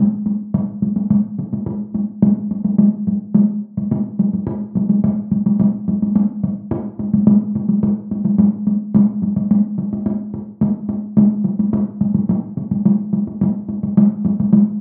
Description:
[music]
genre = japanese traditional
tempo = 107 BPM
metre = 4/4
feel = straight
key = none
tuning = none
[part]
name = taiko ensemble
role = percussion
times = 0.3-14.7 s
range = none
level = -17 LUFS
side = equal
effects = none
[sound]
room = wet studio reverb, RT60 0.6 s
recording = home recording on cassette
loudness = -18 LUFS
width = mono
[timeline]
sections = 0.0-14.0 A section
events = none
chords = none

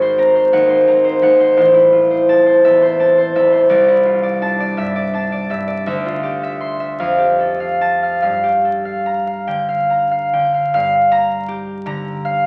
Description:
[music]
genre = classical, solo harp piece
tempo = 47-59 BPM (dotted quarters)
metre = 6/8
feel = rubato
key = G dorian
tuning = A4 = 440 Hz
[part]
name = concert harp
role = solo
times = 0.0-12.5 s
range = Ab1 to C6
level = -15 LUFS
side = equal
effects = none
[sound]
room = wet recital hall reverb, RT60 1.6 s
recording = very old 78 rpm record, vinyl crackle, nothing above 10.7 kHz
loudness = -15 LUFS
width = mono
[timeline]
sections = 0.0-10.7 A section; 10.7-12.5 B section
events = none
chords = 0.0 Ab9; 1.6 Am; 3.7 C69; 5.9 Dm9; 7.0 Fadd9; 8.2 Gm7

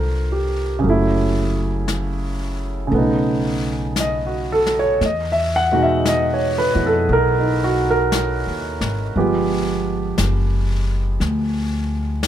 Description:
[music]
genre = jazz ballad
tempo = 58 BPM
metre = 4/4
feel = swing 68% on 8ths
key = unclear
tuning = A4 = 440 Hz
[part]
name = warm concert grand piano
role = accompaniment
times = 0.0-12.3 s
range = B2 to F#5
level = -19 LUFS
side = right 2 dB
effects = none
[part]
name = upright bass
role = bass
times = 0.0-12.3 s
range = F#1 to F2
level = -22 LUFS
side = left 1 dB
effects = none
[part]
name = jazz brush drum kit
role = drums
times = 0.8-12.3 s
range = brushed snare drum, hi-hat, snare drum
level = -29 LUFS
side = left 4 dB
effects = none
[sound]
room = light reverb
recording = none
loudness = -17 LUFS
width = side -10 dB against mid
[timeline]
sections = 0.0-12.3 A section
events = none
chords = 0.0 Fsus2; 0.8 F#m7; 2.9 B9; 5.0 Emaj9; 9.2 G7b9

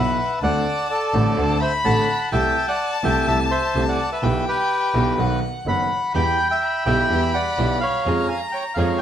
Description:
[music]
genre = tango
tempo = 126 BPM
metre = 4/4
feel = rubato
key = E minor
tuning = A4 = 439 Hz
[part]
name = bandoneon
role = melody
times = 0.0-9.0 s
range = G4 to B5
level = -22 LUFS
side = equal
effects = none
[part]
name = warm violin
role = second line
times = 0.0-9.0 s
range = F#5 to B5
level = -26 LUFS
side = left 2 dB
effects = none
[part]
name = warm upright piano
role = accompaniment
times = 0.0-9.0 s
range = F#1 to G#4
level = -24 LUFS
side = right 1 dB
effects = none
[part]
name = dark double bass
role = bass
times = 0.0-9.0 s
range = F#1 to E#2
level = -25 LUFS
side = right 1 dB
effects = none
[part]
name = rich studio string section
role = stabs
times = 6.1-9.0 s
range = B3 to G#4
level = -32 LUFS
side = left 1 dB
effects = none
[sound]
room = wet studio reverb, RT60 0.8 s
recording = heard from further back in the room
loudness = -18 LUFS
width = side -10 dB against mid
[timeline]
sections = 0.0-9.0 A section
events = none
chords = 0.4 D7; 2.3 Am7/C; 4.2 Em/B; 5.2 B; 6.1 Em; 8.1 C#/E#

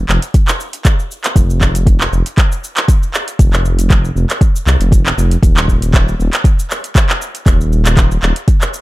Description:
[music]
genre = afro house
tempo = 118 BPM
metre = 4/4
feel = swing 54% on 16ths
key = unclear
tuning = A4 = 440 Hz
[part]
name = dark detuned saw bass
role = bass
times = 0.0-8.3 s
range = Eb1 to C2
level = -14 LUFS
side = equal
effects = sidechain pumping
[part]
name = afro-pop drum kit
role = drums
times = 0.1-8.8 s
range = handclaps, hi-hat, shaker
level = -18 LUFS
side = right 1 dB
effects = none
[part]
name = electronic kick drum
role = drums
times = 0.3-8.6 s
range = none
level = -11 LUFS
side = equal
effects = none
[sound]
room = little or no reverb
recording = dark, warm production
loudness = -10 LUFS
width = side -19 dB against mid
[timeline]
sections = 0.0-8.8 A section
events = none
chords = none

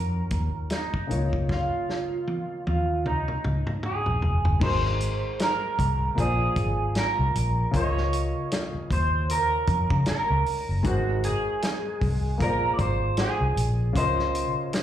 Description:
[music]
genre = lush 1970s-style soul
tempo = 77 BPM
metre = 4/4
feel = swing 58% on 16ths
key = unclear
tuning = A4 = 441 Hz
[part]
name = electric guitar through a small old amp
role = melody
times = 0.0-14.8 s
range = Eb4 to D5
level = -28 LUFS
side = right 2 dB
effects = lush chorus, plate reverb, slapback echo
[part]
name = dark concert grand piano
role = accompaniment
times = 0.0-14.8 s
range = Db3 to Eb5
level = -32 LUFS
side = left 2 dB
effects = slapback echo
[part]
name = vintage muted fingered electric bass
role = bass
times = 0.0-14.5 s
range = F1 to Db3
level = -25 LUFS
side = equal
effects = none
[part]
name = warm soul drum kit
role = drums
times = 0.3-14.8 s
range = crash cymbal, hi-hat, kick drum, snare drum, toms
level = -29 LUFS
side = equal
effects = none
[sound]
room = light reverb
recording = live gig heard through the venue's PA, club reverb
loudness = -23 LUFS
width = side -11 dB against mid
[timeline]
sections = 0.0-4.6 A section; 4.6-14.8 B section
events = drum fill 1.5-4.6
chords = 0.0 Ebm9; 1.1 Db69; 4.6 Ab7; 6.2 Bb9; 7.7 Db6; 10.8 Ab7; 12.4 Bb9; 14.0 Db6

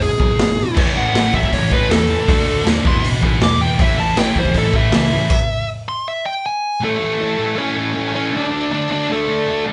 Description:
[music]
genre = punk rock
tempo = 158 BPM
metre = 4/4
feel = straight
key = A major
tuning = A4 = 440 Hz
[part]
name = high-gain lead guitar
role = melody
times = 0.0-9.6 s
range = A3 to D6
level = -22 LUFS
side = equal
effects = distortion
[part]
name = sludgy distorted guitar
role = riff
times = 0.0-9.7 s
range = E2 to D4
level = -24 LUFS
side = equal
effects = overdrive
[part]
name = fuzz picked electric bass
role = bass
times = 0.0-5.2 s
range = E1 to E2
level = -26 LUFS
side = equal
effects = overdrive
[part]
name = raw garage drum kit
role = drums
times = 0.0-5.4 s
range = crash cymbal, hi-hat, kick drum, snare drum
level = -20 LUFS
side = equal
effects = none
[part]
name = scooped high-gain guitar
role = riff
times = 0.7-5.3 s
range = A2 to F#4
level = -25 LUFS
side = equal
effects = distortion
[sound]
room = light reverb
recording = band playing live in one room, nothing above 10.6 kHz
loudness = -17 LUFS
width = mono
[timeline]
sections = 0.0-6.8 A section; 6.8-9.7 B section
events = lead electric guitar solo 0.0-6.8; stop 5.3-6.8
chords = 0.0 E; 0.8 A; 2.3 D; 2.8 E; 3.8 A; 5.3 N.C.; 6.8 A; 8.3 D5

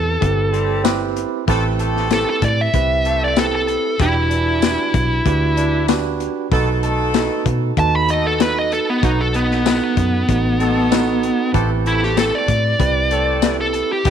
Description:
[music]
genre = straight-eighth soul blues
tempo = 95 BPM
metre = 4/4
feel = straight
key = unclear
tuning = A4 = 438 Hz
[part]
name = smooth overdriven lead guitar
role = melody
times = 0.0-14.1 s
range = B3 to B5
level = -19 LUFS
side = equal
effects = none
[part]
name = tine electric piano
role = accompaniment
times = 0.0-14.1 s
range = C4 to F#5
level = -23 LUFS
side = right 12 dB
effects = fast stereo tremolo
[part]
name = vintage muted fingered electric bass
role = bass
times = 0.0-14.1 s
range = E1 to B2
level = -21 LUFS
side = equal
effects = none
[part]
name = crunchy breakbeat drum kit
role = drums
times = 0.2-14.1 s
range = hi-hat, kick drum, snare drum, tambourine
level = -22 LUFS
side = left 7 dB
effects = none
[part]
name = clear horn section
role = sustained chords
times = 0.5-14.1 s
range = E3 to B4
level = -26 LUFS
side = left 1 dB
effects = none
[sound]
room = light reverb, small room ambience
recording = 1960s-style stereo with parts hard left and right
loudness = -15 LUFS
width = side -8 dB against mid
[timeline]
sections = 0.0-14.1 A section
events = none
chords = 0.0 Am7; 4.0 Em7; 6.5 B7; 11.5 Am7

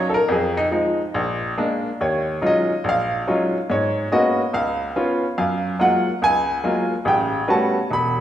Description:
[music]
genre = solo jazz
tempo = 142 BPM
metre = 4/4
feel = swing 65% on 8ths, rubato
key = Eb minor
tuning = A4 = 440 Hz
[part]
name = bright upright piano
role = solo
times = 0.0-8.2 s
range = E1 to B5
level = -18 LUFS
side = equal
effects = none
[sound]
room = wet recital hall reverb, RT60 1.8 s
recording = recorded in a church or concert hall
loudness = -18 LUFS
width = side -11 dB against mid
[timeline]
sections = 0.0-2.0 A section; 2.0-8.2 A section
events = upright piano solo 0.0-8.2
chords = 0.3 Fm7; 1.1 Bb7; 2.0 Ebm11; 3.7 Abm11; 4.5 Db7; 5.4 Gbmaj9; 7.1 A13

